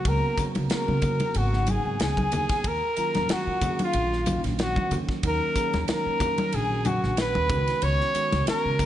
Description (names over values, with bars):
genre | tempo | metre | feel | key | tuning
electric jazz fusion | 93 BPM | 4/4 | swing 54% on 16ths | Eb minor | A4 = 440 Hz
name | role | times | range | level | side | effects
mellow trumpet | melody | 0.0-8.9 s | F4 to Db5 | -27 LUFS | equal | none
mellow hollow concert flute | second line | 0.0-8.9 s | F5 to Db6 | -34 LUFS | left 4 dB | none
bell-like tine electric piano | accompaniment | 0.0-8.9 s | Bb2 to Ab4 | -32 LUFS | right 4 dB | analog chorus
upright bass | bass | 0.1-8.9 s | Ab1 to Eb3 | -28 LUFS | equal | none
modern studio drum kit | drums | 0.1-8.9 s | hi-hat, kick drum, ride cymbal, snare drum | -31 LUFS | equal | none
congas | percussion | 0.4-8.9 s | none | -30 LUFS | left 2 dB | none
room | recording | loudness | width
light reverb, small room reverb | nothing above 10.6 kHz | -22 LUFS | side -12 dB against mid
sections
0.0-8.9 A section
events
none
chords
0.0 Db13sus4; 2.6 Ebm9; 7.5 Db9sus4